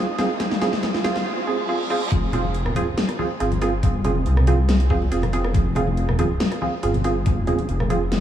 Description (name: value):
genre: deep dubstep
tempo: 140 BPM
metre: 4/4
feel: half-time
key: F minor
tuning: A4 = 442 Hz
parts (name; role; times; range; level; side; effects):
- filtered dub chord stab; stabs; 0.0-8.0 s; C4 to Ab4; -24 LUFS; right 3 dB; chorus, dub echo
- dark detuned saw bass; bass; 0.0-8.2 s; F1 to C2; -22 LUFS; equal; high-pass filter
- riser and reverse cymbal; sound effects; 0.0-2.1 s; none; -31 LUFS; right 4 dB; none
- dubstep drum kit; drums; 0.2-8.2 s; hi-hat, rim click, snare drum; -27 LUFS; left 1 dB; small room reverb
- electronic kick drum; drums; 0.4-7.3 s; none; -21 LUFS; equal; high-pass filter on kick, small room reverb
- congas and bongos; percussion; 2.1-8.0 s; none; -28 LUFS; left 3 dB; dub echo
room: moderate huge ambient reverb, RT60 4.7 s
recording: dreamy mix soaked in reverb, small room ambience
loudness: -19 LUFS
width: side -10 dB against mid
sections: 0.0-2.1 A section; 2.1-8.2 B section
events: build-up 0.0-2.1; drum fill 0.0-1.3; riser 0.0-1.3; reverse cymbal 1.3-2.1; drop 2.1-8.2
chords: 0.0 Fm